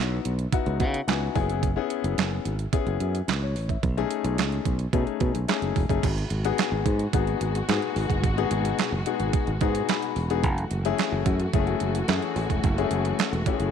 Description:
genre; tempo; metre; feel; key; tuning
early-eighties boogie funk; 109 BPM; 4/4; straight; unclear; A4 = 440 Hz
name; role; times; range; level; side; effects
warm baby grand piano; accompaniment; 0.0-13.7 s; G#3 to B5; -28 LUFS; left 13 dB; none
modern bright fingered electric bass; bass; 0.0-13.7 s; E1 to C#3; -27 LUFS; right 1 dB; none
detuned 8-bit digital drum machine; drums; 0.3-13.7 s; crash cymbal, handclaps, hi-hat, kick drum, snare drum; -27 LUFS; right 5 dB; overdrive
muted studio string section; sustained chords; 6.0-13.7 s; B2 to F#4; -33 LUFS; left 1 dB; none
room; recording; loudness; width
light reverb, digital ambience; 1960s-style stereo; -23 LUFS; side -8 dB against mid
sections
0.0-6.0 A section; 6.0-13.7 B section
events
grand piano fill 0.5-1.6, 9.6-10.4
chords
0.0 C#m11; 1.4 F#7sus4; 3.8 B13; 6.0 G#m7; 10.4 F#m7

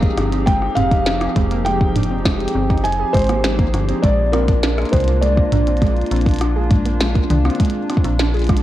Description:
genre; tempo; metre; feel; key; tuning
IDM; 101 BPM; 4/4; straight; unclear; A4 = 440 Hz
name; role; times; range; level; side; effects
felt-muted upright piano; melody; 0.0-8.1 s; Bb4 to Ab5; -22 LUFS; equal; tape echo, shimmer reverb
hollow soft pad; sustained chords; 0.0-8.6 s; F3 to Ab4; -24 LUFS; left 1 dB; chorus, sidechain pumping, shimmer reverb
warbly dusty pluck; arpeggios; 0.0-8.6 s; Ab3 to Ab4; -24 LUFS; right 2 dB; chorus, digital delay, shimmer reverb
metallic FM bass; bass; 0.0-8.6 s; F1 to C2; -20 LUFS; equal; none
electronic kick drum; drums; 0.0-8.6 s; none; -17 LUFS; equal; none
glitchy drum kit; drums; 0.0-8.6 s; hi-hat, rim click, snare drum, toms; -24 LUFS; equal; none
room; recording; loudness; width
light reverb; worn, warbling old tape, cassette tape, warbly pitch drift; -15 LUFS; side -14 dB against mid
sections
0.0-8.6 A section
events
none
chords
0.0 Fm7; 4.0 Bb

